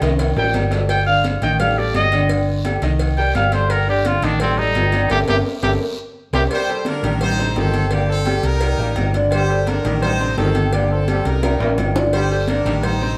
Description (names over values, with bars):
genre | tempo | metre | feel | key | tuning
latin, salsa | 171 BPM | 4/4 | straight | G minor | A4 = 440 Hz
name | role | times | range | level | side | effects
bright grand piano | accompaniment | 0.0-13.2 s | C3 to Eb5 | -25 LUFS | equal | none
hollow-body short-scale fingered electric bass | bass | 0.0-13.1 s | G1 to C2 | -23 LUFS | equal | none
congas | percussion | 0.0-13.2 s | none | -31 LUFS | equal | none
cowbell and bongos | percussion | 0.0-13.0 s | none | -32 LUFS | equal | none
guiro | percussion | 0.0-6.4, 12.1-13.2 s | none | -40 LUFS | equal | none
timbales and agogo bells | percussion | 0.0-13.0 s | none | -28 LUFS | equal | none
clear trumpet | melody | 0.4-6.4 s | C4 to G5 | -22 LUFS | equal | none
brilliant horn section | melody | 6.5-13.2 s | Bb3 to C5 | -26 LUFS | equal | none
clear trombone section | second line | 6.5-13.1 s | D3 to Bb3 | -31 LUFS | equal | none
room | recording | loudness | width
wet stone room reverb, RT60 1.1 s | band playing live in one room | -18 LUFS | mono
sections
0.0-6.5 A section; 6.5-13.2 B section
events
trumpet solo 0.0-6.5; drum fill 0.0-0.9, 5.1-6.5, 11.3-12.1; band accent 5.1-6.5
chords
0.2 Cm7; 0.9 Gsus2; 1.6 F13; 2.3 Gsus2; 3.0 Cm7; 3.7 Gsus2; 4.4 Cm69; 5.1 Gmadd9; 5.8 C5; 6.5 Gmadd9; 7.2 Am7b5; 7.9 Gmadd9; 8.6 Cm7; 9.3 Gmadd9; 10.0 Am7b5; 10.7 Gmadd9; 11.4 Cm7; 12.1 Gmadd9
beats
0.19 0.54 | 0.89 1.24 1.59 1.94 | 2.29 2.65 3.00 3.35 | 3.70 4.05 4.40 4.75 | 5.10 5.45 5.81 6.16 | 6.51 6.86 7.21 7.56 | 7.91 8.27 8.62 8.97 | 9.32 9.67 10.02 10.37 | 10.72 11.08 11.43 11.78 | 12.13 12.48 12.83